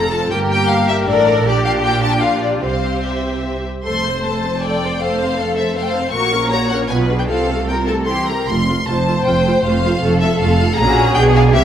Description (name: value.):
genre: quick classical-period movement for string orchestra.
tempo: 144-161 BPM.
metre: 3/4.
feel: rubato.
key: F major.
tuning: A4 = 440 Hz.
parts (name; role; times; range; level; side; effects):
warm symphonic violin section; melody; 0.0-11.6 s; D5 to Db6; -20 LUFS; left 4 dB; none.
clear symphonic violin section; second line; 0.0-11.6 s; F4 to D5; -20 LUFS; left 2 dB; none.
rich symphonic viola section; accompaniment; 0.0-11.6 s; E3 to C5; -22 LUFS; right 1 dB; none.
clear symphonic double bass section; bass; 0.0-11.6 s; F1 to C2; -21 LUFS; right 3 dB; none.
rich symphonic cello section; bass; 0.0-11.6 s; F2 to C3; -22 LUFS; right 2 dB; none.
room: wet scoring stage reverb, RT60 1.6 s.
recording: none.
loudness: -14 LUFS.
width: side -9 dB against mid.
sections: 0.0-3.9 A section; 3.9-11.6 B section.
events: none.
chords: 0.3 Gm; 1.5 Gm7/Bb; 2.6 C; 3.9 F; 6.1 Gb/Bb; 6.9 Bdim7; 7.3 F/C; 8.1 C; 8.5 F; 10.8 Gb/Bb; 11.2 Bm6.